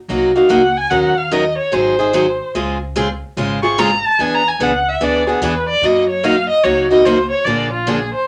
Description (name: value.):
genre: acoustic string swing (jazz manouche).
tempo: 146 BPM.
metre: 4/4.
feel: swing 64% on 8ths.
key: unclear.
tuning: A4 = 440 Hz.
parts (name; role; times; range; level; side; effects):
picked steel-string acoustic guitar; accompaniment; 0.1-8.0 s; Db3 to Bb4; -17 LUFS; equal; none.
upright bass; bass; 0.1-8.1 s; Ab1 to Gb2; -31 LUFS; equal; none.
warm violin; melody; 0.4-8.3 s; F4 to Db6; -19 LUFS; equal; none.
room: wet small room reverb, RT60 0.5 s.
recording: none.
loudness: -15 LUFS.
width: mono.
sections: 0.0-8.3 A section.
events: violin solo 0.0-8.3.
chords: 0.0 Gb6; 0.9 Ebm7; 1.7 Ab7; 2.5 Dbmaj7; 4.2 E7; 5.8 Gb6; 7.5 Bb7.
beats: 0.08 0.49 | 0.90 1.31 1.72 2.13 | 2.54 2.95 3.36 3.77 | 4.18 4.59 5.00 5.41 | 5.82 6.23 6.64 7.05 | 7.46 7.87.